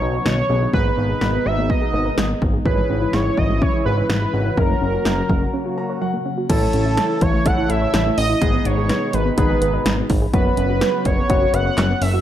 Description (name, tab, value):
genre	synth-pop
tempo	125 BPM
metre	4/4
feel	straight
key	unclear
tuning	A4 = 440 Hz
part	octave-doubled lead	melody	0.0-12.2 s	A4 to F#5	-23 LUFS	right 2 dB	chorus, analog delay
part	warm concert grand piano	accompaniment	0.0-12.0 s	B3 to A#5	-27 LUFS	left 5 dB	none
part	sweeping resonant pad	sustained chords	0.0-12.2 s	B2 to F#4	-26 LUFS	left 1 dB	chorus
part	soft round pluck	arpeggios	0.0-12.2 s	D#3 to D#5	-26 LUFS	right 1 dB	chorus, analog delay
part	fat analog bass	bass	0.0-12.2 s	F#1 to B1	-22 LUFS	equal	none
part	punchy analog drum machine	drums	0.3-12.1 s	crash cymbal, handclaps, hi-hat, kick drum, snare drum	-21 LUFS	equal	none
room	moderate recital hall reverb, RT60 1.4 s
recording	dark, warm production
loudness	-16 LUFS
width	side -11 dB against mid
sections	0.0-6.5 A section; 6.5-12.2 B section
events	break 5.5-6.5; grand piano fill 5.5-6.5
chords	0.0 Badd9; 0.7 G#madd9; 2.7 C#m/G#; 4.6 F#; 6.5 A; 8.4 G#m; 10.3 F#sus4